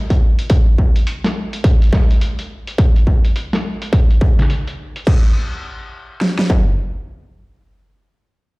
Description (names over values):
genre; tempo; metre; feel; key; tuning
glitch hop; 105 BPM; 4/4; swing 61% on 16ths; none; none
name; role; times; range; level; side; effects
boom bap sampler-style drum kit; drums; 0.1-5.2 s; crash cymbal, hi-hat, snare drum; -24 LUFS; equal; overdrive, low-pass filter on hats, small room ambience, low-pass filter on snare, low-pass filter on cymbals
dubstep drum kit; drums; 0.1-6.7 s; kick drum, snare drum; -12 LUFS; equal; distortion, small room ambience
room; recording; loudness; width
little or no reverb; played on a big sound system in a bare room, large studio reverb; -13 LUFS; side -25 dB against mid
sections
0.0-5.1 A section; 5.1-7.4 B section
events
filter sweep on drum 0.0-5.1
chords
none